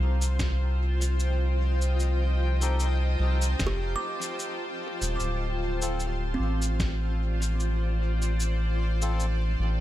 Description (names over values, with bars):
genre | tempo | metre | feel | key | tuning
ambient dub | 75 BPM | 4/4 | swing 55% on 16ths | F mixolydian | A4 = 440 Hz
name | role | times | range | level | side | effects
granular cloud pad | sustained chords | 0.0-9.8 s | F4 to A5 | -33 LUFS | left 1 dB | built-in reverb
kalimba | arpeggios | 0.0-9.3 s | C4 to D6 | -37 LUFS | right 3 dB | tape echo
round analog bass | bass | 0.0-9.8 s | D1 to C2 | -25 LUFS | equal | none
electronic cabasa and snare drum | drums | 0.2-9.4 s | none | -34 LUFS | equal | dub echo
electronic kick drum | drums | 0.4-7.0 s | none | -32 LUFS | equal | none
melodica | stabs | 2.6-9.3 s | C4 to A4 | -41 LUFS | left 4 dB | vintage 12-bit sampler grit, dub echo
room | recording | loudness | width
little or no reverb | none | -25 LUFS | side -14 dB against mid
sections
0.0-9.8 A section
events
none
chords
0.0 F9; 5.2 Dm7